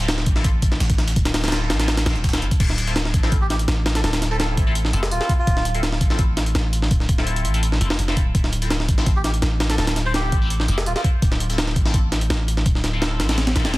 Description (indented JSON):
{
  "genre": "drum and bass, jungle",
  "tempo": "167 BPM",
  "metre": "4/4",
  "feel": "straight",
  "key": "D minor",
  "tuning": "A4 = 440 Hz",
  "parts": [
    { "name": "band-passed chord stab", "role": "stabs", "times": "0.0-13.8 s", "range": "C4 to A4", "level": "-31 LUFS", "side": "left 2 dB", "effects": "phaser, cassette tape, dub echo" },
    { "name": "long sustained 808-style bass", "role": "bass", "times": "0.0-13.8 s", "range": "D1 to A1", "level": "-22 LUFS", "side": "equal", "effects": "tube saturation" },
    { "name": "breakbeat sampler-style drum kit", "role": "drums", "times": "0.0-13.8 s", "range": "crash cymbal, hi-hat, kick drum, snare drum", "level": "-20 LUFS", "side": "equal", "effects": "none" },
    { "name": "breakbeat sampler-style drum kit", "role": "drums", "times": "0.0-2.5 s", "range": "hi-hat, snare drum", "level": "-32 LUFS", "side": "right 1 dB", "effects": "high-pass filter on hats, high-pass filter on snare, high-pass filter on room" },
    { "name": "melodica", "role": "melody", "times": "3.4-5.7, 9.2-11.0 s", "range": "F4 to C5", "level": "-30 LUFS", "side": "right 1 dB", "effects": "dub echo" }
  ],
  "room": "digital ambience",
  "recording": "dense, heavily limited modern master, vinyl crackle",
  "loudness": "-18 LUFS",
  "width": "side -19 dB against mid",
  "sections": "0.0-2.6 A section; 2.6-13.8 A section",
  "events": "drop 0.0-2.6, 2.6-13.8",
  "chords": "0.0 Dm7"
}